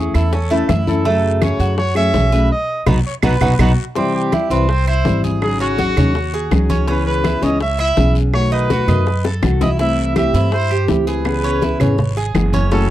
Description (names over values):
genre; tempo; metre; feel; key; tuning
latin, Cuban son and guajira; 165 BPM; 4/4; straight; unclear; A4 = 441 Hz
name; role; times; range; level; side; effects
warm trumpet; melody; 0.0-12.9 s; F#4 to E5; -22 LUFS; right 1 dB; none
nylon-string guitar; accompaniment; 0.0-12.9 s; B2 to G#4; -20 LUFS; left 3 dB; none
Cuban tres; arpeggios; 0.0-12.9 s; A3 to D#5; -22 LUFS; right 5 dB; none
upright bass; bass; 0.0-12.9 s; F#1 to G2; -18 LUFS; equal; none
bongos; percussion; 0.1-12.9 s; none; -24 LUFS; left 6 dB; none
claves; percussion; 0.1-12.5 s; none; -30 LUFS; right 11 dB; none
congas; percussion; 0.1-12.9 s; none; -21 LUFS; equal; none
guiro; percussion; 0.1-12.9 s; none; -36 LUFS; left 10 dB; none
room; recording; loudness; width
small room ambience; dry, close 1970s-style studio recording; -14 LUFS; side -13 dB against mid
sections
0.0-4.0 A section; 4.0-12.9 B section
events
drum fill 2.5-4.0, 9.2-9.8; band accent 2.5-4.0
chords
0.0 A/E; 1.1 F#madd9; 2.5 B; 4.0 C; 5.4 G#7sus4; 6.9 C#m7; 8.3 B7; 9.8 C6; 11.3 C#m7